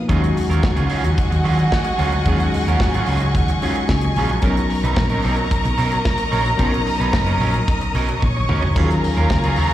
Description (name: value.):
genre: disco.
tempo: 111 BPM.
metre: 4/4.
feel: straight.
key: unclear.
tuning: A4 = 440 Hz.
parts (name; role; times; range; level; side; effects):
tine electric piano; accompaniment; 0.0-9.7 s; B2 to A#4; -25 LUFS; left 3 dB; plate reverb, slapback echo.
clear studio string section; sustained chords; 0.0-9.7 s; G#4 to D#6; -29 LUFS; left 3 dB; plate reverb.
warm studio violin section; second line; 0.1-9.7 s; F#4 to C#6; -24 LUFS; equal; plate reverb, slapback echo.
electric guitar at the edge of break-up; accompaniment; 0.1-9.7 s; F#3 to B4; -25 LUFS; right 6 dB; spring reverb, plate reverb.
hollow-body short-scale fingered electric bass; bass; 0.1-9.7 s; F#1 to D#3; -19 LUFS; equal; none.
modern studio drum kit; drums; 0.1-9.7 s; hi-hat, kick drum, snare drum, splash cymbal, toms; -22 LUFS; equal; none.
room: light reverb.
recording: live gig heard through the venue's PA, recital hall reverb.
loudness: -16 LUFS.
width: side -13 dB against mid.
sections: 0.1-9.7 A section.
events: drum fill 8.2-8.8.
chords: 0.1 D#m11; 4.4 Bmaj9; 8.8 D#m11.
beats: | 0.09 0.63 1.17 1.72 | 2.26 2.80 3.34 3.88 | 4.43 4.97 5.51 6.05 | 6.60 7.14 7.68 8.22 | 8.77 9.31.